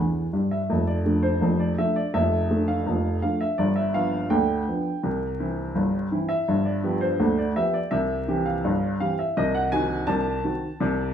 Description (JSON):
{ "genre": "ragtime piano", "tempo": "83 BPM", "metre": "2/4", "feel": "straight", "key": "C major", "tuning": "A4 = 441 Hz", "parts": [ { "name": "warm upright piano", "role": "solo", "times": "0.0-11.1 s", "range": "F1 to A5", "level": "-22 LUFS", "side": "equal", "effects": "none" } ], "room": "wet studio reverb, RT60 0.7 s", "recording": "band playing live in one room, vinyl crackle, small room ambience", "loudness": "-22 LUFS", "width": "side -8 dB against mid", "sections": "0.7-11.1 A section", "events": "upright piano fill 0.0-0.7", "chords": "0.0 C (rootless); 0.7 Dm/F; 3.6 G7; 5.0 C; 6.5 G7; 7.9 C; 9.3 Cdim7" }